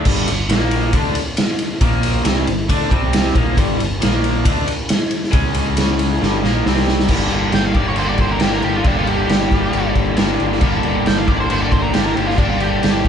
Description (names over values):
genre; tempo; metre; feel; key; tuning
blues rock power trio and southern rock; 136 BPM; 4/4; straight; G minor; A4 = 440 Hz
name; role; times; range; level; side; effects
raw garage guitar; riff; 0.0-13.1 s; G2 to G4; -19 LUFS; equal; overdrive
fingered electric bass; bass; 0.1-13.1 s; G1 to D2; -22 LUFS; equal; none
raw garage drum kit; drums; 0.1-13.1 s; crash cymbal, kick drum, ride cymbal, snare drum; -17 LUFS; equal; none
octave-fuzz lead guitar; melody; 7.5-13.1 s; D4 to G5; -23 LUFS; left 1 dB; distortion
room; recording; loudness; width
moderate small room reverb, RT60 0.5 s; band playing live in one room, nothing above 10.9 kHz; -14 LUFS; side -8 dB against mid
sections
0.1-7.1 A section; 7.1-13.1 B section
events
drum fill 6.2-7.1; lead electric guitar solo 7.1-13.1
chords
0.1 G5; 0.5 Bb5; 0.9 D5; 1.8 Bb5; 2.3 G5; 2.9 C5; 3.4 Gm; 4.0 Bb5; 4.4 D5; 5.3 C#5; 6.2 Gm; 6.6 C5; 7.1 Gm